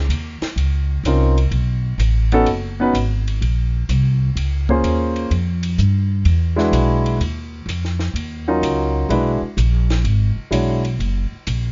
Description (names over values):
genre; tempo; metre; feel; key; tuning
jazz, small-group swing and bop; 127 BPM; 4/4; swing 68% on 8ths; unclear; A4 = 440 Hz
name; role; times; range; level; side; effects
upright bass; bass; 0.0-11.7 s; Gb1 to G2; -20 LUFS; equal; none
compact cocktail drum kit; drums; 0.1-11.6 s; hi-hat, kick drum, ride cymbal, snare drum; -34 LUFS; equal; none
warm concert grand piano; accompaniment; 1.1-10.8 s; Gb3 to Db5; -21 LUFS; equal; none
room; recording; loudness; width
light reverb; nothing above 7.5 kHz; -19 LUFS; mono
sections
0.0-11.7 A section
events
none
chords
0.0 Dbmaj9; 1.5 Cb9; 3.4 Bbm9; 5.3 Fsus2; 6.3 E9; 7.2 Ebm9; 9.1 E9; 11.0 Gb